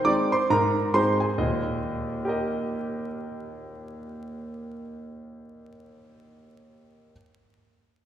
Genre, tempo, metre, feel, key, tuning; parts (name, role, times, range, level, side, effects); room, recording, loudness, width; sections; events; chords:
jazz, stride piano; 136 BPM; 4/4; swing 59% on 8ths; Eb major; A4 = 440 Hz
clear grand piano; solo; 0.0-7.1 s; Eb2 to D6; -25 LUFS; right 1 dB
wet concert hall reverb, RT60 2.1 s; recorded in a church or concert hall, vinyl crackle; -23 LUFS; side -10 dB against mid
0.0-1.4 A section; 1.4-4.9 B section
0.0 Ab; 1.4 Eb